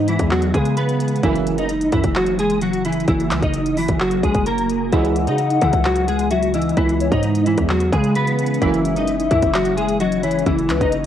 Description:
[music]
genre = hip hop, trap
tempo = 130 BPM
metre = 4/4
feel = half-time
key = unclear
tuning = A4 = 440 Hz
[part]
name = clean electric guitar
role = melody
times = 0.0-11.1 s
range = E3 to D#5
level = -19 LUFS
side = equal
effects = ensemble chorus, low-pass filter, cassette tape, tape echo
[part]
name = ethereal airy pad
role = sustained chords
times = 0.0-11.1 s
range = C#3 to C#4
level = -26 LUFS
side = equal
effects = ensemble chorus, built-in reverb, phaser
[part]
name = distorted 808-style bass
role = bass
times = 0.0-11.1 s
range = F#1 to C#3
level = -23 LUFS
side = equal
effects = distortion
[part]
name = trap drum kit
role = drums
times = 0.1-11.0 s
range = handclaps, hi-hat, kick drum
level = -23 LUFS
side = equal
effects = cassette tape
[part]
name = warm brass ensemble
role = stabs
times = 1.2-1.7, 4.9-5.4, 8.6-9.1 s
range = E2 to A#3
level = -23 LUFS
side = right 9 dB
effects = none
[part]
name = hollow clarinet-like synth lead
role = second line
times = 4.9-10.9 s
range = B4 to F#5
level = -23 LUFS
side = left 9 dB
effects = chorus
[sound]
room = little or no reverb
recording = home recording on cassette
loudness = -16 LUFS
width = side -10 dB against mid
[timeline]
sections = 0.0-11.1 A section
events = none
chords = 0.0 C#m7; 1.2 F#7; 4.9 C#m7; 8.6 F#7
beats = 0.31 0.77 | 1.23 1.70 2.16 2.62 | 3.08 3.54 4.00 4.46 | 4.92 5.39 5.85 6.31 | 6.77 7.23 7.70 8.16 | 8.62 9.08 9.54 10.00 | 10.46 10.93

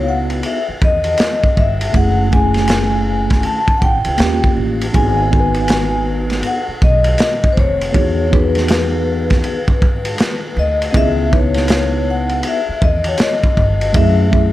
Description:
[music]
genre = hip hop, jazz-hop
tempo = 80 BPM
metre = 4/4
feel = swing 63% on 16ths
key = unclear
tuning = A4 = 439 Hz
[part]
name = vibraphone with soft mallets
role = melody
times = 0.0-14.5 s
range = B4 to A5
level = -19 LUFS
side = left 3 dB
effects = slapback echo
[part]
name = mellow tine electric piano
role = accompaniment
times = 0.0-14.5 s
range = A3 to B4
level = -19 LUFS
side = right 1 dB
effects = medium stereo tremolo
[part]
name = upright bass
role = bass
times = 0.0-14.5 s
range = E#1 to G#2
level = -19 LUFS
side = right 1 dB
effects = none
[part]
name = crunchy breakbeat drum kit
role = drums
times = 0.3-14.5 s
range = hi-hat, kick drum, ride cymbal, snare drum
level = -16 LUFS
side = equal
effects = none
[sound]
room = studio ambience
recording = none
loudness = -13 LUFS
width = side -15 dB against mid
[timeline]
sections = 0.0-14.5 A section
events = none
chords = 0.0 C#m9; 1.9 F#m9; 4.2 D#7; 4.9 G#m7; 7.9 Emaj9; 10.9 C#m9; 13.9 F#m9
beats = 0.45 1.20 | 1.95 2.69 3.44 4.20 | 4.95 5.70 6.45 7.20 | 7.95 8.70 9.45 10.20 | 10.95 11.70 12.45 13.20 | 13.95

